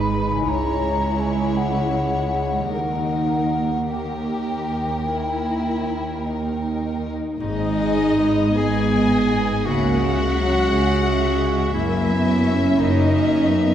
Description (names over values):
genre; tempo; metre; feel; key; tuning
classical, slow romantic movement for symphony orchestra; 50-58 BPM (dotted quarters); 12/8; rubato; G# minor; A4 = 440 Hz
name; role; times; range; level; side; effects
warm chamber violin section; melody; 0.0-13.7 s; A#4 to E5; -33 LUFS; left 4 dB; none
mellow hollow concert flute; second line; 0.0-7.0 s; F#5 to B5; -26 LUFS; left 2 dB; none
warm symphonic violin section; second line; 0.0-13.7 s; D#4 to G#5; -28 LUFS; left 2 dB; none
dark symphonic viola section; accompaniment; 0.0-13.7 s; D#3 to C#4; -25 LUFS; right 2 dB; none
concert harp; arpeggios; 0.0-13.7 s; F#2 to E5; -30 LUFS; left 4 dB; none
rich symphonic cello section; bass; 0.0-13.7 s; C#2 to C#3; -26 LUFS; right 2 dB; none
rich symphonic double bass section; bass; 0.0-13.7 s; F#1 to D#2; -26 LUFS; right 1 dB; none
bright clarinet; second line; 7.4-13.7 s; D#4 to G#4; -22 LUFS; equal; none
room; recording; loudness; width
wet scoring stage reverb, RT60 1.7 s; heard from further back in the room; -18 LUFS; side -10 dB against mid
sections
0.0-7.4 A section; 7.4-13.7 B section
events
none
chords
0.5 C#m; 2.7 D#; 7.4 G#m; 9.7 C#m; 11.7 F#7